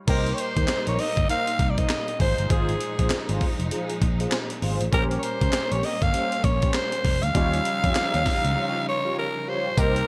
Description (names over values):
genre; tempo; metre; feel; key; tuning
R&B, new jack swing; 99 BPM; 4/4; swing 61% on 16ths; unclear; A4 = 440 Hz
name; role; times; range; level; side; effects
clear concert grand piano; accompaniment; 0.0-10.1 s; G3 to C5; -36 LUFS; equal; analog chorus
raspy alto saxophone; melody; 0.1-10.1 s; Ab4 to F5; -28 LUFS; equal; none
warm studio string section; sustained chords; 0.1-10.1 s; Bb2 to Eb4; -36 LUFS; equal; none
mellow synth brass; stabs; 0.1-10.0 s; Db4 to Db5; -35 LUFS; equal; chorus, phaser
fingered electric bass; bass; 0.1-10.0 s; F1 to F2; -29 LUFS; equal; none
breakbeat sampler-style drum kit; drums; 0.1-10.1 s; crash cymbal, handclaps, hi-hat, kick drum, snare drum, tambourine; -28 LUFS; equal; gated reverb
room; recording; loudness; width
light reverb; bright 1980s-style digital production; -24 LUFS; mono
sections
0.1-9.8 A section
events
break 8.6-9.8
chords
0.1 Cm7; 2.2 Ab6; 4.9 Bbm69; 7.3 Eb9